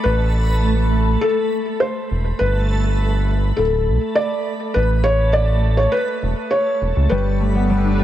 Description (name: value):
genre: IDM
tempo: 102 BPM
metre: 4/4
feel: straight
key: unclear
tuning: A4 = 440 Hz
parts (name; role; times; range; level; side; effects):
- felt-muted upright piano; melody; 0.0-8.0 s; A4 to D5; -21 LUFS; left 1 dB; vintage 12-bit sampler grit, shimmer reverb, tape echo
- backwards swelling texture; texture; 0.0-8.0 s; A3 to B5; -25 LUFS; right 2 dB; built-in reverb, shimmer reverb
- round analog bass; bass; 0.1-8.0 s; D1 to C#2; -18 LUFS; equal; tube saturation
- hollow soft pad; sustained chords; 7.1-8.0 s; G3 to B4; -22 LUFS; right 1 dB; ensemble chorus
- concert harp; arpeggios; 7.1-8.0 s; G3 to D4; -20 LUFS; left 5 dB; shimmer reverb, tape echo
room: light reverb, small room ambience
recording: none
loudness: -16 LUFS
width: side -12 dB against mid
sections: 0.0-8.0 A section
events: none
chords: 0.1 Am; 2.4 Gadd9; 4.8 Aadd9; 7.1 Gadd9